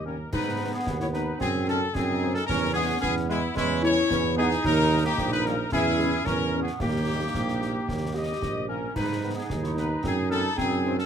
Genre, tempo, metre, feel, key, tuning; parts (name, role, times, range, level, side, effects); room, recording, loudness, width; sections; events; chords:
military-style march for wind band; 111 BPM; 2/4; straight; G# minor; A4 = 440 Hz
dark trumpet section; melody; 0.0-11.1 s; E4 to D#5; -29 LUFS; left 2 dB
mellow French horn section; accompaniment; 0.0-11.0 s; D#3 to C#4; -35 LUFS; left 5 dB
mellow trombone section; sustained chords; 0.0-11.1 s; G3 to E4; -32 LUFS; right 2 dB
mellow tuba; bass; 0.0-11.0 s; A#1 to G#2; -28 LUFS; right 3 dB
dark woodwind section; second line; 0.1-11.1 s; G#3 to G4; -30 LUFS; left 1 dB
concert snare drum, clash cymbals and concert bass drum; drums; 0.3-11.1 s; -35 LUFS; left 1 dB
little or no reverb; -23 LUFS; side -8 dB against mid
0.3-11.1 A section
0.3 G#m; 1.4 G#7/F#; 2.5 C#m/E; 4.6 D#; 5.7 C#m/E; 6.8 D#; 9.0 G#m; 10.0 G#7/F#